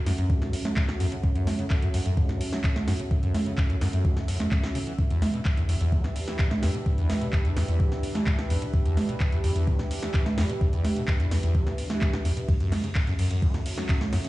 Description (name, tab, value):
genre	acid house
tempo	128 BPM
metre	4/4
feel	straight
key	F# phrygian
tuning	A4 = 439 Hz
part	dark analog pad	sustained chords	0.0-14.3 s	C#4 to E5	-34 LUFS	right 1 dB	chorus, sidechain pumping
part	acid bass, saw	riff	0.1-14.3 s	D2 to A3	-27 LUFS	equal	wide subtle chorus, cassette tape, sidechain pumping, tape echo
part	electro analog drum machine	drums	0.1-14.3 s	congas, handclaps, hi-hat, ride cymbal, snare drum	-31 LUFS	right 1 dB	none
part	electronic kick drum	drums	0.3-14.0 s	none	-24 LUFS	equal	none
room	light reverb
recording	played on a big sound system in a bare room, large studio reverb, nothing above 11.0 kHz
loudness	-23 LUFS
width	side -18 dB against mid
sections	0.0-14.3 A section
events	none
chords	0.0 F#m7; 5.0 Em7; 12.5 F#m7